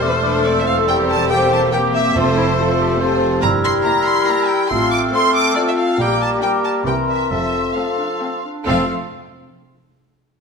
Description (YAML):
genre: quick classical-period movement for symphony orchestra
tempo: 140 BPM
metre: 3/4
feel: straight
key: F major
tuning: A4 = 440 Hz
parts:
  - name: rich chamber violin section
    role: melody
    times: 0.0-8.9 s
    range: C5 to D6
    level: -21 LUFS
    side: left 1 dB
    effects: none
  - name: clear clarinet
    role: second line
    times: 0.0-8.8 s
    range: Bb3 to A4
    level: -24 LUFS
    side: left 4 dB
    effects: none
  - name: mellow hollow flute section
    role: second line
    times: 0.0-8.9 s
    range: A5 to F6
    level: -24 LUFS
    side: right 1 dB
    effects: none
  - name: rich chamber violin section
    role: second line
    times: 0.0-8.9 s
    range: E4 to C5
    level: -28 LUFS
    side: left 3 dB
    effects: none
  - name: warm oboe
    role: second line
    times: 0.0-8.9 s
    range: G4 to D5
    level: -25 LUFS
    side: right 1 dB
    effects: none
  - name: rich chamber viola section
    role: accompaniment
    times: 0.0-8.9 s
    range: G3 to E4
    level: -26 LUFS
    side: equal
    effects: none
  - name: warm bassoon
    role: accompaniment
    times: 0.0-8.8 s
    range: E3 to Bb3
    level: -26 LUFS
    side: right 2 dB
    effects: none
  - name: dark French horn section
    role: sustained chords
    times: 0.0-8.9 s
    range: A3 to C5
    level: -22 LUFS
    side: left 4 dB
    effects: none
  - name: clear chamber double bass section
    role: bass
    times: 0.0-8.9 s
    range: E1 to C2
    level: -26 LUFS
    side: right 4 dB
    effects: none
  - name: dark chamber cello section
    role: bass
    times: 0.0-8.9 s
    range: E2 to C3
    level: -27 LUFS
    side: right 3 dB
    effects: none
  - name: timpani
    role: percussion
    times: 2.2-2.8, 8.7-8.9 s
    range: F2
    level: -28 LUFS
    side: right 2 dB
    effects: none
room: wet scoring stage reverb, RT60 1.4 s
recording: minimal, uncompressed stereo recording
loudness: -14 LUFS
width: side -5 dB against mid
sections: 0.0-8.7 A section; 8.7-10.0 B section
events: none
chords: 0.0 C/E; 0.9 C7/E; 2.2 F; 3.4 Edim/G; 4.7 F/A; 6.0 Gm/Bb; 6.9 C7; 7.3 F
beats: 0.04 0.47 | 0.89 1.31 1.73 | 2.16 2.58 3.01 | 3.43 3.85 4.27 | 4.70 5.13 5.57 | 5.99 6.43 6.86 | 7.31 7.76 8.22 | 8.67